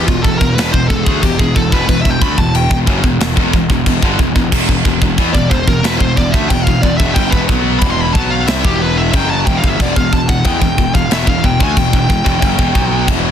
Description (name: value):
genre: heavy metal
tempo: 91 BPM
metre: 4/4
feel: straight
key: E minor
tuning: A4 = 441 Hz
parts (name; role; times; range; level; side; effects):
- high-gain lead guitar; melody; 0.0-13.1 s; F4 to C6; -19 LUFS; equal; distortion, ping-pong delay
- scooped high-gain guitar; riff; 0.0-13.3 s; E2 to B3; -16 LUFS; equal; distortion
- fuzz picked electric bass; bass; 0.0-13.3 s; E1 to E2; -18 LUFS; equal; overdrive
- tight metal drum kit; drums; 0.1-13.2 s; china cymbal, crash cymbal, kick drum, snare drum; -15 LUFS; equal; none
room: little or no reverb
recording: dense, heavily limited modern master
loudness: -11 LUFS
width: side -9 dB against mid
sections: 0.0-13.3 A section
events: lead electric guitar solo 0.0-13.3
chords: 0.0 Em